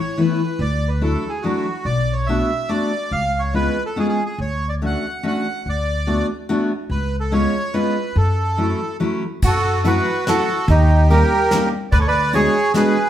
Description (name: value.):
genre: musette waltz.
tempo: 143 BPM.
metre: 3/4.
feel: straight.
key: F# minor.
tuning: A4 = 440 Hz.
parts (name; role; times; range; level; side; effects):
bandoneon; melody; 0.0-13.1 s; D#4 to F#5; -21 LUFS; right 2 dB; none.
fingerpicked steel-string acoustic guitar; accompaniment; 0.2-13.0 s; E3 to F#4; -21 LUFS; left 2 dB; none.
upright bass; bass; 0.6-12.5 s; B1 to F#2; -19 LUFS; equal; none.
vintage hollow-body jazz guitar; second line; 9.4-13.1 s; D#4 to B4; -26 LUFS; right 2 dB; none.
soft brush drum kit; drums; 9.4-12.8 s; crash cymbal, hi-hat, kick drum, snare drum; -24 LUFS; equal; none.
room: moderate large studio reverb, RT60 1.0 s.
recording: band playing live in one room.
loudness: -17 LUFS.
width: side -11 dB against mid.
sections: 0.0-9.4 A section; 9.4-13.1 B section.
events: none.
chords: 0.0 Asus2; 0.6 Dadd9; 1.9 Bm7; 3.1 C#7; 4.4 Dmaj7; 5.7 Bm7/D; 6.9 C#7; 8.2 F#m7; 10.7 D#7; 11.9 G#m7b5/D.